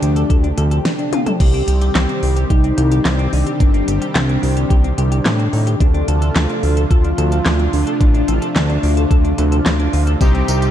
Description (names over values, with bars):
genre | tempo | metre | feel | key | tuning
synthwave | 109 BPM | 4/4 | straight | C dorian | A4 = 440 Hz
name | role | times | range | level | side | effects
soft octave-layered synth lead | melody | 0.0-10.7 s | D4 to A4 | -22 LUFS | left 1 dB | chorus, phaser, digital delay
warm analog pad | sustained chords | 0.0-10.7 s | C3 to G4 | -24 LUFS | right 1 dB | chorus, sidechain pumping
semi-hollow electric guitar | riff | 0.0-10.7 s | C4 to A4 | -28 LUFS | right 1 dB | wide subtle chorus, ping-pong delay
fat analog bass | bass | 0.0-10.7 s | G1 to A2 | -16 LUFS | equal | sidechain pumping
pop drum kit | drums | 0.0-10.7 s | crash cymbal, handclaps, hi-hat, snare drum, tambourine, toms | -22 LUFS | equal | none
electronic kick drum | drums | 0.3-10.3 s | none | -13 LUFS | equal | none
analog synth brass | stabs | 10.2-10.7 s | C3 to G4 | -20 LUFS | left 2 dB | chorus
room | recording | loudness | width
digital ambience | dark, warm production | -13 LUFS | side -11 dB against mid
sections
0.0-1.4 A section; 1.4-10.7 B section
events
break 0.9-1.4; drum fill 1.1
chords
0.0 Dm7; 1.4 Cm; 5.8 Dm7; 10.2 Cm